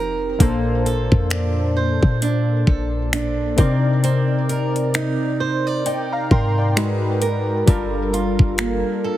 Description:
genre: contemporary R&B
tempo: 66 BPM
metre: 4/4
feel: swing 58% on 16ths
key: unclear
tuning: A4 = 441 Hz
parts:
  - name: warm analog keys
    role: accompaniment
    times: 0.0-9.2 s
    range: Bb2 to C6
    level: -23 LUFS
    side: left 2 dB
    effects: chorus
  - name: fingerpicked swing-style acoustic guitar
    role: arpeggios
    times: 0.0-9.2 s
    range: F3 to D5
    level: -24 LUFS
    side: right 5 dB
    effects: ping-pong delay
  - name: clean 808-style bass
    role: bass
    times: 0.0-8.8 s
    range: F1 to C3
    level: -21 LUFS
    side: equal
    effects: none
  - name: smooth R&B drum kit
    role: drums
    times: 0.4-8.8 s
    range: finger snaps, hi-hat, kick drum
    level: -18 LUFS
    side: equal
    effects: none
room: little or no reverb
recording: heavily compressed radio sound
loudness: -17 LUFS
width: side -13 dB against mid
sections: 0.0-9.2 A section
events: none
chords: 0.4 Bbmaj9; 3.6 Cm9; 6.8 Abm9; 7.7 Gm9

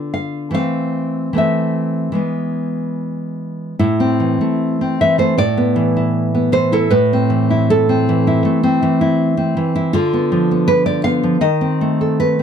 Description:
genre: romantic piece for solo classical guitar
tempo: 70-84 BPM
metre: 4/4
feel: rubato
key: A minor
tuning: A4 = 439 Hz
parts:
  - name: nylon-string guitar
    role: solo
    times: 0.0-12.4 s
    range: A2 to G5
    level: -14 LUFS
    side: equal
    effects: none
room: light reverb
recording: close, detailed microphones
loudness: -14 LUFS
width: side -7 dB against mid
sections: 0.0-3.8 A section; 3.8-12.4 B section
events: none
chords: 0.0 Bdim/D; 0.6 Am/E; 2.2 E; 3.8 Am; 5.4 E5/A; 6.9 Am; 9.9 Bdim/D; 11.4 B7b9/D#

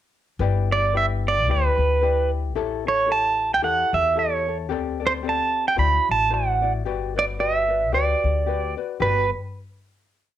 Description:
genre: Hawaiian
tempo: 112 BPM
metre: 4/4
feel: swing 57% on 8ths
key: G major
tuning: A4 = 440 Hz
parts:
  - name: ukulele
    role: accompaniment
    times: 0.4-9.3 s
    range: C4 to D5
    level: -29 LUFS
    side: left 11 dB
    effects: cassette tape
  - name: upright bass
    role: bass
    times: 0.4-9.3 s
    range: G1 to E2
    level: -25 LUFS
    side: left 2 dB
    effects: none
  - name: pedal steel guitar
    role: melody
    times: 0.7-9.3 s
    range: B4 to B5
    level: -20 LUFS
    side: right 4 dB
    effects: cassette tape
room: moderate studio reverb, RT60 0.7 s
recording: home recording on cassette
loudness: -19 LUFS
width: side -11 dB against mid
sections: 0.4-9.0 A section; 9.0-10.4 final chord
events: none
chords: 0.4 G6; 2.6 A7; 4.7 D7sus4; 5.8 D9; 6.8 Gmaj7

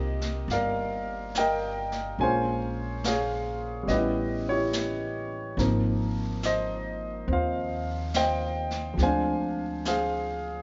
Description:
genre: jazz ballad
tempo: 71 BPM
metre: 4/4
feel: swing 69% on 8ths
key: unclear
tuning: A4 = 442 Hz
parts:
  - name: warm baby grand piano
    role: accompaniment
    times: 0.0-10.6 s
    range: F3 to Ab5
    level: -30 LUFS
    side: equal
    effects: none
  - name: upright bass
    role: bass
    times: 0.0-10.6 s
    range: G1 to Eb2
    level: -35 LUFS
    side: equal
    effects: none
  - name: jazz brush drum kit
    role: drums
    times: 0.2-10.6 s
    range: brushed snare drum, hi-hat, snare drum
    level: -38 LUFS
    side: equal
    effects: none
room: moderate recital hall reverb, RT60 1.7 s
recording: recorded in a church or concert hall, nothing above 7.6 kHz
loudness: -28 LUFS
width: mono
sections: 0.0-10.6 A section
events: none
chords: 0.0 Cm11; 2.2 Bbm9; 3.9 A9; 5.6 Ab6; 9.0 Dm7b5

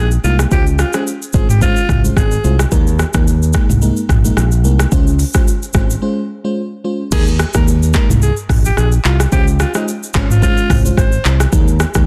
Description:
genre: afrobeats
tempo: 109 BPM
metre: 4/4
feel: swing 55% on 16ths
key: unclear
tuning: A4 = 444 Hz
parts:
  - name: raspy alto saxophone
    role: melody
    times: 0.0-2.6, 7.1-11.4 s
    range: Db4 to C5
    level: -24 LUFS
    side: equal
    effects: tape echo
  - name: modern bright fingered electric bass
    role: bass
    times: 0.0-12.1 s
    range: Ab1 to Eb2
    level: -16 LUFS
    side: equal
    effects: none
  - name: afro-pop drum kit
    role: drums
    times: 0.1-12.1 s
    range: crash cymbal, handclaps, hi-hat, kick drum, rim click, shaker, toms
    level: -17 LUFS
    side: equal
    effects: soft clipping on snare
  - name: FM electric piano with soft pad layer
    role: accompaniment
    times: 0.2-12.1 s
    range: Ab3 to C5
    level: -23 LUFS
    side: equal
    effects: chorus
room: little or no reverb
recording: dense, heavily limited modern master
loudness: -14 LUFS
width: mono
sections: 0.0-7.1 A section; 7.1-12.1 B section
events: break 6.0-7.1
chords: 0.0 Ebsus4; 0.5 Dbmaj7; 2.7 Ebsus4; 4.9 Dbmaj7; 7.1 Ebsus4; 9.3 Dbmaj7; 11.5 Ebsus4

